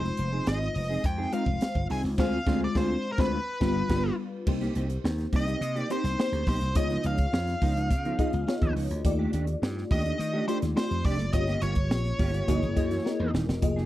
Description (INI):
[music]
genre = polished 1980s jazz-funk pop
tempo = 105 BPM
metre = 4/4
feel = straight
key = C minor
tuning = A4 = 440 Hz
[part]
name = nasal lead guitar with a parked wah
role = melody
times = 0.0-13.3 s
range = Bb4 to Ab5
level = -33 LUFS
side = equal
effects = overdrive, slapback echo
[part]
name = bell-like FM electric piano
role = accompaniment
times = 0.0-13.9 s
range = G3 to Eb5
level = -32 LUFS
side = left 3 dB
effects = ensemble chorus
[part]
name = mellow electric guitar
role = riff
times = 0.0-13.9 s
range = E3 to Bb4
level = -34 LUFS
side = right 4 dB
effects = ensemble chorus
[part]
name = slap bass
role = bass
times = 0.0-13.8 s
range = D#1 to Eb3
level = -30 LUFS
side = equal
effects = none
[part]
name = crisp fusion drum kit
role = drums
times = 0.0-13.8 s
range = crash cymbal, hi-hat, kick drum, snare drum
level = -29 LUFS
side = equal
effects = none
[sound]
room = studio ambience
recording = dry, close 1970s-style studio recording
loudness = -25 LUFS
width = side -14 dB against mid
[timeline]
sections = 0.0-4.5 A section; 4.5-13.9 B section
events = band accent 2.2-4.5; drum fill 13.1-13.6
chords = 0.0 Fm7; 2.2 Dm7b5; 3.3 G7; 4.5 Cm7; 6.8 Db9; 9.0 Ebmaj9#11; 11.3 Gm7b5; 12.5 F#13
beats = 0.47 1.04 1.61 | 2.18 2.75 3.33 3.90 | 4.47 5.04 5.61 6.19 | 6.76 7.33 7.90 8.47 | 9.05 9.62 10.19 10.76 | 11.34 11.91 12.48 13.05 | 13.63